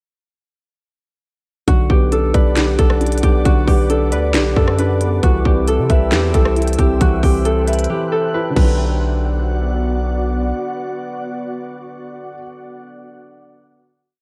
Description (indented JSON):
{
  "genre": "hip hop, trap",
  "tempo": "135 BPM",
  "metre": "4/4",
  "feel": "half-time",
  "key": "B phrygian",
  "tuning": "A4 = 440 Hz",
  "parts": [
    { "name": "concert harp", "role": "melody", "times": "1.7-10.6 s", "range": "F#4 to B4", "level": "-22 LUFS", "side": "equal", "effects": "low-pass filter, cassette tape" },
    { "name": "dark concert grand piano", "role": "accompaniment", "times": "1.7-14.2 s", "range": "D3 to E5", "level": "-26 LUFS", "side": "equal", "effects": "low-pass filter, cassette tape" },
    { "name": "glassy FM pad", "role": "sustained chords", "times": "2.3-12.3 s", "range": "B3 to F#6", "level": "-30 LUFS", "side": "equal", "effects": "ensemble chorus, built-in reverb, cassette tape" },
    { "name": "long sustained 808-style bass", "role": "bass", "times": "1.7-10.5 s", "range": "B1 to C3", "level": "-20 LUFS", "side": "equal", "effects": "none" },
    { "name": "trap drum kit", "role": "drums", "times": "1.7-8.7 s", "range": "crash cymbal, finger snaps, hi-hat, kick drum, rim click, snare drum", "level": "-18 LUFS", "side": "equal", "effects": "overdrive, cassette tape" }
  ],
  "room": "light reverb",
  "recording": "home recording on cassette",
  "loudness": "-16 LUFS",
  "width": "mono",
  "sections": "1.7-8.8 hook; 8.8-12.3 final hit",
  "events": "drums muted 7.9-8.8",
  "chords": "1.7 Bm; 5.2 C; 8.6 Bm",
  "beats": "| 1.68 2.12 2.56 3.01 | 3.45 3.90 4.34 4.79 | 5.23 5.68 6.12 6.57 | 7.01 7.45 7.90 8.34 | 8.79 9.23 9.68 10.12 | 10.56 11.01 11.45 11.90"
}